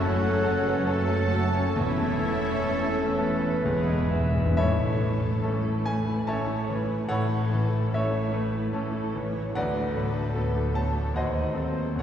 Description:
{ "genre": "classical, romantic movement for piano and orchestra", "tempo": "64-75 BPM", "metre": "3/4", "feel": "rubato", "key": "A major", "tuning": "A4 = 439 Hz", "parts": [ { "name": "clear grand piano", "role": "melody", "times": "0.0-12.0 s", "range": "D2 to A5", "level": "-28 LUFS", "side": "left 1 dB", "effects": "none" }, { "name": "muted studio violin section", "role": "melody", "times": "0.0-12.0 s", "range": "A4 to A5", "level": "-41 LUFS", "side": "left 2 dB", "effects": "none" }, { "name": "clear oboe", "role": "second line", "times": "0.0-3.6 s", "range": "E4 to A4", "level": "-36 LUFS", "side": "right 1 dB", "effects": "none" }, { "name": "flute section", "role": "second line", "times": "0.0-3.6 s", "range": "C#5 to F#5", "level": "-40 LUFS", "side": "equal", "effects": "none" }, { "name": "muted studio violin section", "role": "second line", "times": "0.0-12.0 s", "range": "C#4 to C#5", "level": "-37 LUFS", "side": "left 2 dB", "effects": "none" }, { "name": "muted studio viola section", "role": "accompaniment", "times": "0.0-12.0 s", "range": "E3 to E4", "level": "-34 LUFS", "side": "equal", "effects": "none" }, { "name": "mellow French horn section", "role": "sustained chords", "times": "0.0-3.6 s", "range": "E3 to A3", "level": "-37 LUFS", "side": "left 1 dB", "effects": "none" }, { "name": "mellow trombone section", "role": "sustained chords", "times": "0.0-4.2 s", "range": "C#3 to C#4", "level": "-35 LUFS", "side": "right 1 dB", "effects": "none" }, { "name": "clear trumpet section", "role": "stabs", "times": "0.0-4.2 s", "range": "G#4 to A4", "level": "-33 LUFS", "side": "right 2 dB", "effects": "none" }, { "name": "muted studio cello section", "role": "bass", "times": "0.0-12.0 s", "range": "D2 to A2", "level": "-32 LUFS", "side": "right 2 dB", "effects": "none" }, { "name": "muted studio double bass section", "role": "bass", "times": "0.0-12.0 s", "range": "E1 to D#2", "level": "-34 LUFS", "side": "right 1 dB", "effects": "none" }, { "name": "timpani", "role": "percussion", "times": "1.8-12.0 s", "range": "E2 to A2", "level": "-31 LUFS", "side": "left 1 dB", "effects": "none" }, { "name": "warm clarinet", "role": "second line", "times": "2.7-4.5 s", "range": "A4 to E5", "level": "-35 LUFS", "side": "right 1 dB", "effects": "none" } ], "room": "wet concert hall reverb, RT60 2.6 s", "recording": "heard from further back in the room", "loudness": "-24 LUFS", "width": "side -9 dB against mid", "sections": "0.0-4.6 A section; 4.6-12.0 B section", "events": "timpani fill 3.6-4.6", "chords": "0.0 F#m; 1.8 A/E; 3.6 E; 4.6 A; 9.5 Bm7/D; 11.2 D#dim7" }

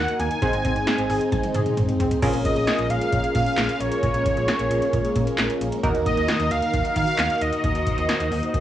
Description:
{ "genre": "synth-pop", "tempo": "133 BPM", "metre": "4/4", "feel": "straight", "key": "unclear", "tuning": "A4 = 440 Hz", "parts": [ { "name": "wide unison lead", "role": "melody", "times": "0.0-8.6 s", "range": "Db5 to Ab5", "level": "-25 LUFS", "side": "equal", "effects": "analog delay" }, { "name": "funky polysynth comp", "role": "accompaniment", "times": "0.0-8.6 s", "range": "Bb3 to C5", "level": "-25 LUFS", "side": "right 1 dB", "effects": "chorus, cassette tape, plate reverb" }, { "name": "phased string machine", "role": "sustained chords", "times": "0.0-8.6 s", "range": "Eb3 to C5", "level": "-31 LUFS", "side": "equal", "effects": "ensemble chorus, phaser, cassette tape, plate reverb" }, { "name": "slap-like FM bass", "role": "bass", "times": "0.0-8.6 s", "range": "Ab1 to Eb3", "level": "-27 LUFS", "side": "equal", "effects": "none" }, { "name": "electro analog drum machine", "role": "drums", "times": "0.1-8.6 s", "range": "crash cymbal, handclaps, hi-hat, kick drum, snare drum, toms", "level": "-25 LUFS", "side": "equal", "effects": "cassette tape" }, { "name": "wide unison pluck", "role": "arpeggios", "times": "0.2-2.1 s", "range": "Ab3 to Ab5", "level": "-33 LUFS", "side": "left 1 dB", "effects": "cassette tape, analog delay, plate reverb" } ], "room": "moderate booth ambience, RT60 0.2 s", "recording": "home recording on cassette, studio reverb", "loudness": "-20 LUFS", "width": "side -12 dB against mid", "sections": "0.0-2.2 A section; 2.2-8.6 B section", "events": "drum fill 1.3-2.2", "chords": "0.4 Ab; 2.2 Bbm7; 5.8 Ebm" }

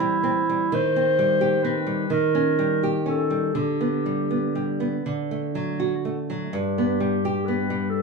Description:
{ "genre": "romantic duo for clarinet and classical guitar", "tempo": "40-45 BPM (dotted quarters)", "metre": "6/8", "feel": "rubato", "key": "G major", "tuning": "A4 = 440 Hz", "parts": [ { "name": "warm clarinet", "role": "melody", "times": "0.0-8.0 s", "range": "E4 to C5", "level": "-24 LUFS", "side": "equal", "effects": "none" }, { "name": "nylon-string guitar", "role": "accompaniment", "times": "0.0-8.0 s", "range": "G2 to G4", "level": "-23 LUFS", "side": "right 1 dB", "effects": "none" } ], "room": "wet studio reverb, RT60 0.5 s", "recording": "heard from further back in the room, studio ambience", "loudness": "-21 LUFS", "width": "side -4 dB against mid", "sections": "0.0-8.0 A section", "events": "none", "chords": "0.0 C/E; 0.7 Cm/Eb; 2.1 Eb7; 3.5 G/D; 5.0 D; 6.5 G" }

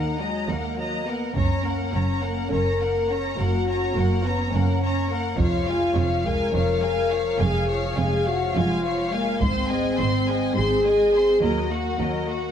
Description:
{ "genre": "cinematic, epic orchestral film score", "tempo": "209 BPM (eighths)", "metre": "7/8", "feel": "straight", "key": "unclear", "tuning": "A4 = 436 Hz", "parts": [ { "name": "rich symphonic violin section", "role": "melody", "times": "0.0-12.5 s", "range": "Eb5 to C6", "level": "-31 LUFS", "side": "left 3 dB", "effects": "none" }, { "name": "clear studio violin section", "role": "second line", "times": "0.0-12.5 s", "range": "Gb4 to F5", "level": "-31 LUFS", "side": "left 1 dB", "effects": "none" }, { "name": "warm symphonic viola section", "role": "accompaniment", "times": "0.0-12.5 s", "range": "F3 to Db4", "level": "-32 LUFS", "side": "equal", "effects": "none" }, { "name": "warm French horn section", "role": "sustained chords", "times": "0.0-12.5 s", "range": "Ab3 to Bb4", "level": "-24 LUFS", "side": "left 2 dB", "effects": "none" }, { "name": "rich symphonic double bass section", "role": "bass", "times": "0.0-12.5 s", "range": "F1 to Eb2", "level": "-27 LUFS", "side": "right 2 dB", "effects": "none" }, { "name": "warm symphonic cello section", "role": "bass", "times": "0.0-12.5 s", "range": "Eb2 to Ab2", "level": "-30 LUFS", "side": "right 3 dB", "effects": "none" }, { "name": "taiko ensemble", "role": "drums", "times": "1.4-10.5 s", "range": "none", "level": "-28 LUFS", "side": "right 1 dB", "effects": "none" } ], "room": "moderate scoring stage reverb, RT60 1.8 s", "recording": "none", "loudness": "-20 LUFS", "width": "side -8 dB against mid", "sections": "0.0-12.5 A section", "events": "none", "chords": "0.0 Ebm; 1.4 Gb; 5.4 Db/F; 9.4 Ab; 11.4 Ebm" }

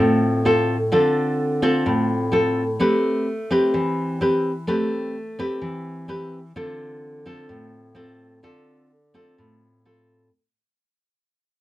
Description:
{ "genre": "bossa nova", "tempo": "128 BPM", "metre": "4/4", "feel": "straight", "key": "unclear", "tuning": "A4 = 443 Hz", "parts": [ { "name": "nylon-string guitar", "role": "solo", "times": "0.0-10.3 s", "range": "A2 to B4", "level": "-20 LUFS", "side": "equal", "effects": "none" } ], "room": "moderate studio ambience, RT60 0.4 s", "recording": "dark, warm production", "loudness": "-19 LUFS", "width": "side -15 dB against mid", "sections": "0.0-10.3 A section", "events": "fade-out 0.0-10.3", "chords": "0.0 Dm7; 2.8 Am9; 6.5 Dm7" }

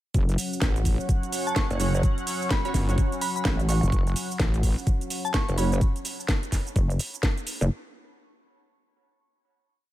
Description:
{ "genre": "bass house", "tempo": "127 BPM", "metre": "4/4", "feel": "swing 61% on 16ths", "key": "F# minor", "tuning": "A4 = 435 Hz", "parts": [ { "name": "sweeping resonant pad", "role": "sustained chords", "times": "0.1-5.8 s", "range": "F#3 to F#5", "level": "-33 LUFS", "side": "left 1 dB", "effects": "chorus, sidechain pumping" }, { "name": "wobble bass", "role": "bass", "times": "0.1-4.8 s", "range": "F#1 to A1", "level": "-24 LUFS", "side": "equal", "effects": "chorus, tube saturation, sidechain pumping" }, { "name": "electronic kick drum", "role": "drums", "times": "0.1-7.3 s", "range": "none", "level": "-25 LUFS", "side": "equal", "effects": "none" }, { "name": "garage drum kit", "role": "drums", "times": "0.1-7.7 s", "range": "hi-hat, shaker, snare drum", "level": "-31 LUFS", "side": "equal", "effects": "none" }, { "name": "glassy synth bell", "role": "melody", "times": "1.5-5.8 s", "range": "A5 to C#6", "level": "-34 LUFS", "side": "right 1 dB", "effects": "chorus, tape echo" }, { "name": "pulsing pluck wobble bass", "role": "bass", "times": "1.7-7.7 s", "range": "F#1 to A1", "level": "-23 LUFS", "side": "equal", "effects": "chorus, overdrive, sidechain pumping" }, { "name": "orchestra-hit-like synth stab", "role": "stabs", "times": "1.8-5.7 s", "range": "F#3 to C#5", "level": "-34 LUFS", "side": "right 3 dB", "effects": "built-in reverb, phaser, cassette tape, sidechain pumping, tape echo" } ], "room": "little or no reverb", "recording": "none", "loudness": "-23 LUFS", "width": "side -14 dB against mid", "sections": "0.1-7.7 drop", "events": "drop 0.1-7.7", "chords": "0.1 F#5" }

